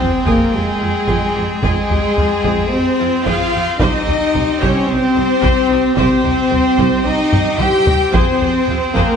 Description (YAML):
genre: cinematic, epic orchestral film score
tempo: 111 BPM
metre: 4/4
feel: straight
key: F minor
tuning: A4 = 436 Hz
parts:
  - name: rich symphonic violin section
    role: melody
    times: 0.0-9.2 s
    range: Ab4 to G5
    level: -26 LUFS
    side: left 3 dB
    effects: none
  - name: rich symphonic violin section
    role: second line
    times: 0.0-9.2 s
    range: Ab4 to G5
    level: -23 LUFS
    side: left 1 dB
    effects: none
  - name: rich symphonic viola section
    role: accompaniment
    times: 0.0-9.2 s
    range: C4 to C5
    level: -25 LUFS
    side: right 2 dB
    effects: none
  - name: mellow French horn section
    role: sustained chords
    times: 0.0-9.2 s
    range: Ab3 to G4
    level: -17 LUFS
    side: left 3 dB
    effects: none
  - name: pipe organ, trumpet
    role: sustained chords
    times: 0.0-9.2 s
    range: C4 to G5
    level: -24 LUFS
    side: right 1 dB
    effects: none
  - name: rich symphonic cello section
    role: bass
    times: 0.0-9.2 s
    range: Ab3 to G4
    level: -22 LUFS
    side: right 3 dB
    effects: none
  - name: rich symphonic double bass section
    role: bass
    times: 0.0-9.0 s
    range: C2 to F2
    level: -22 LUFS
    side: right 3 dB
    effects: none
  - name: sub drop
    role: sound effects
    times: 0.0-1.6 s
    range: none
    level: -30 LUFS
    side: equal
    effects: none
  - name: taiko ensemble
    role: drums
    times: 0.3-9.2 s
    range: none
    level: -20 LUFS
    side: equal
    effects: none
room: wet scoring stage reverb, RT60 1.6 s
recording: nothing above 10.5 kHz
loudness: -13 LUFS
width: side -7 dB against mid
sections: 0.0-9.2 A section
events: impact 0.0-1.6; drum fill 7.3-8.1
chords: 0.0 Fmadd9; 3.8 Cm; 8.1 Fmadd9